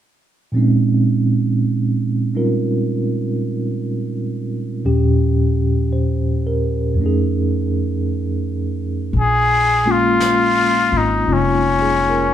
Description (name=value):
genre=jazz ballad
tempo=56 BPM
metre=4/4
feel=swing 67% on 8ths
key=Bb dorian, Bb minor from 9.1 s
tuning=A4 = 441 Hz
part: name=tine electric piano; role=accompaniment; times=0.5-12.3 s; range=Eb2 to C5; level=-17 LUFS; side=right 1 dB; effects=medium tremolo
part: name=upright bass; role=bass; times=9.1-12.3 s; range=F1 to Bb1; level=-21 LUFS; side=left 1 dB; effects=none
part: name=jazz brush drum kit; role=drums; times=9.1-12.3 s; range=brushed snare drum, hi-hat, snare drum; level=-30 LUFS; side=right 1 dB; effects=none
part: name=trumpet with straight mute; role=melody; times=9.2-12.3 s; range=Db4 to Ab4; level=-16 LUFS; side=left 3 dB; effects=none
room=moderate large studio reverb, RT60 0.9 s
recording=band playing live in one room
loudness=-16 LUFS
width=side -10 dB against mid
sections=0.5-9.1 A section; 9.1-12.3 B section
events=none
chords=0.5 Bbm11; 4.8 Eb9; 7.0 F7alt; 9.1 Bbm7